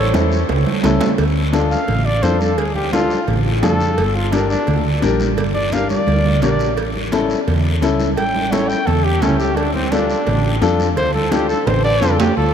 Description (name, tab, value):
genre	latin, cumbia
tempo	172 BPM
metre	4/4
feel	straight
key	D harmonic minor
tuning	A4 = 440 Hz
part	warm flugelhorn	melody	0.0-12.5 s	C4 to G5	-21 LUFS	equal	none
part	accordion	second line	0.0-0.1, 12.2-12.5 s	C#4 to A4	-29 LUFS	right 2 dB	none
part	hollow-body short-scale fingered electric bass	bass	0.0-12.5 s	G1 to F2	-19 LUFS	equal	none
part	clear upright piano	accompaniment	0.1-12.3 s	C#4 to Bb4	-20 LUFS	left 5 dB	none
part	congas	percussion	0.1-12.5 s	none	-22 LUFS	right 4 dB	none
part	cowbell and timbales	percussion	0.1-12.3 s	none	-27 LUFS	right 5 dB	none
part	guiro	percussion	0.1-12.5 s	none	-31 LUFS	left 3 dB	none
room	moderate huge ambient reverb, RT60 6.9 s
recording	in a vast, echoing space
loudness	-14 LUFS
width	side -8 dB against mid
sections	0.0-1.2 A section; 1.2-12.4 B section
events	drum fill 0.5-1.2, 5.7-6.8, 11.7-12.4; flugelhorn solo 1.2-12.4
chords	0.0 A; 1.2 Dm; 4.0 Gm; 6.8 A7; 9.6 Dm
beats	0.14 0.49 0.84 | 1.19 1.54 1.89 2.23 | 2.58 2.93 3.28 3.63 | 3.98 4.33 4.68 5.03 | 5.38 5.73 6.08 6.43 | 6.78 7.13 7.48 7.83 | 8.18 8.53 8.88 9.22 | 9.57 9.92 10.27 10.62 | 10.97 11.32 11.67 12.02 | 12.37